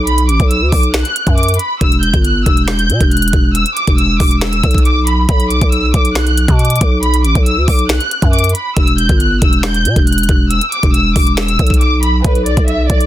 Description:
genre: hip hop, trap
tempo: 138 BPM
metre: 4/4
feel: half-time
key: B minor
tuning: A4 = 440 Hz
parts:
  - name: warm studio violin section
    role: melody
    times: 0.0-13.1 s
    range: B4 to G6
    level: -17 LUFS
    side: equal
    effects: low-pass filter
  - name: growling 808-style bass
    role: bass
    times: 0.0-13.1 s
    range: E1 to B2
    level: -14 LUFS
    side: equal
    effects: none
  - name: trap drum kit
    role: drums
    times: 0.1-13.1 s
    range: finger snaps, hi-hat, kick drum, snare drum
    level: -13 LUFS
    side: equal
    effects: soft clipping on snare
room: digital ambience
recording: dense, heavily limited modern master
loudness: -10 LUFS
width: side -13 dB against mid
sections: 0.0-12.2 A section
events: none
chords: 0.0 Bm; 1.8 E5; 5.3 Bm; 8.8 E5; 12.2 Bm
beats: | 0.07 0.51 0.94 1.38 | 1.81 2.25 2.68 3.11 | 3.55 3.98 4.42 4.85 | 5.29 5.72 6.16 6.59 | 7.03 7.46 7.90 8.33 | 8.77 9.20 9.64 10.07 | 10.51 10.94 11.38 11.81 | 12.24 12.68

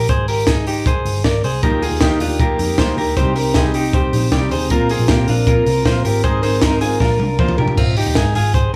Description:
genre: jangly indie pop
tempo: 156 BPM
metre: 4/4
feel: straight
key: unclear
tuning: A4 = 441 Hz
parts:
  - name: direct-recorded clean electric guitar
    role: arpeggios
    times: 0.0-8.7 s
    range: C4 to D5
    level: -22 LUFS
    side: equal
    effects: digital delay
  - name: vintage muted picked electric bass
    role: bass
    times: 0.0-8.8 s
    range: G1 to Eb3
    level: -23 LUFS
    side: equal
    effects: none
  - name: compact cocktail drum kit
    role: drums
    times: 0.1-8.6 s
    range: crash cymbal, hi-hat, kick drum, snare drum, toms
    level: -20 LUFS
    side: equal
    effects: none
  - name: fingerpicked twelve-string acoustic guitar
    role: accompaniment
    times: 1.6-7.8 s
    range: C3 to Bb4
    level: -23 LUFS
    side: equal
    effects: none
room: light reverb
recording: none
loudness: -16 LUFS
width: mono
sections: 0.0-7.8 A section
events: drum fill 7.0-7.8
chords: 0.1 Abadd9; 1.6 Ebadd9; 3.2 Cm; 4.7 Bbsus2; 6.2 Abadd9; 7.0 Bb; 7.8 Ab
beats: | 0.09 0.48 0.86 1.25 | 1.63 2.02 2.40 2.79 | 3.17 3.55 3.94 4.32 | 4.71 5.09 5.47 5.86 | 6.24 6.63 7.01 7.39 | 7.78 8.16 8.54

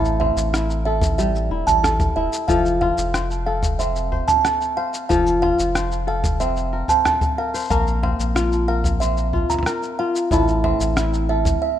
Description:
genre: folktronica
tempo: 92 BPM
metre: 4/4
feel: straight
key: F major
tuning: A4 = 436 Hz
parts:
  - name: kora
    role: arpeggios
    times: 0.0-11.8 s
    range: A2 to F5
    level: -23 LUFS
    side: left 3 dB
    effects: ping-pong delay
  - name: warm sub bass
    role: bass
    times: 0.0-11.6 s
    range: E1 to Bb1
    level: -23 LUFS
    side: equal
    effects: none
  - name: lo-fi sampler-style drum kit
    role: drums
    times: 0.1-11.6 s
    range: cabasa, rim click, toms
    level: -27 LUFS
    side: equal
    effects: studio reverb
  - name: music box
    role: second line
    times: 0.2-11.7 s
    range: E5 to Bb5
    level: -22 LUFS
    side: right 4 dB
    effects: vintage 12-bit sampler grit, ping-pong delay
  - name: kick drum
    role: drums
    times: 1.0-11.6 s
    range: none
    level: -25 LUFS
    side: equal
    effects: studio reverb
room: light reverb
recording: rough home demo mix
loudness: -18 LUFS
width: side -11 dB against mid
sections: 0.0-11.8 A section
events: break 11.6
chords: 0.0 Am7; 2.5 F; 7.7 Bbsus2; 10.3 Am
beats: 0.54 1.19 1.84 | 2.49 3.14 3.80 4.45 | 5.10 5.75 6.41 7.06 | 7.71 8.36 9.01 9.66 | 10.32 10.97 11.62

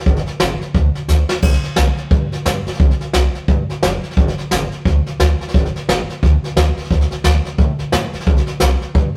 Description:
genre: rockabilly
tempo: 176 BPM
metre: 4/4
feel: swing 60% on 8ths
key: unclear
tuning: A4 = 440 Hz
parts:
  - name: upright bass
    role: bass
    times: 0.1-9.1 s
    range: F#1 to A2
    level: -20 LUFS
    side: equal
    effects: none
  - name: jazz brush drum kit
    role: drums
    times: 0.1-9.0 s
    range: crash cymbal, hi-hat, kick drum, snare drum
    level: -19 LUFS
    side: equal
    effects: none
room: light reverb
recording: rough rehearsal-room recording, tube saturation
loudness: -17 LUFS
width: mono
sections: 0.0-9.2 A section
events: drum fill 1.1-1.4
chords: none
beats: | 0.06 0.40 0.74 1.09 | 1.43 1.77 2.12 2.46 | 2.80 3.14 3.48 3.83 | 4.17 4.51 4.85 5.19 | 5.54 5.88 6.22 6.56 | 6.90 7.24 7.58 7.93 | 8.27 8.61 8.95

